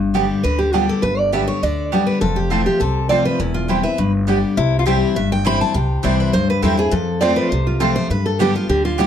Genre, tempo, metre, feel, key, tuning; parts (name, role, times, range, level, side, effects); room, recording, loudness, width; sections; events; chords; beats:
bluegrass; 204 BPM; 4/4; straight; A4 = 440 Hz
picked steel-string acoustic guitar; accompaniment; 0.0-9.1 s; E2 to G4; -19 LUFS; left 3 dB
upright bass; bass; 0.0-9.1 s; E1 to G2; -22 LUFS; equal
mandolin; stabs; 0.1-9.1 s; B3 to A5; -22 LUFS; right 8 dB
picked steel-string acoustic guitar; melody; 0.4-9.1 s; E4 to B5; -20 LUFS; right 1 dB; plate reverb
lap resonator guitar; second line; 4.6-5.1 s; E4 to G4; -21 LUFS; left 8 dB
moderate small room reverb, RT60 0.5 s; lossy compression artefacts; -15 LUFS; side -9 dB against mid
0.0-4.6 A section; 4.6-9.1 B section
0.0 Gadd9; 2.2 F; 3.4 C/E; 4.0 G; 4.6 C; 6.9 F; 8.1 G
0.15 0.44 0.74 | 1.03 1.33 1.63 1.92 | 2.22 2.51 2.81 3.10 | 3.40 3.69 3.99 4.28 | 4.58 4.87 5.16 5.46 | 5.75 6.05 6.34 6.63 | 6.93 7.22 7.51 7.81 | 8.10 8.40 8.69 8.98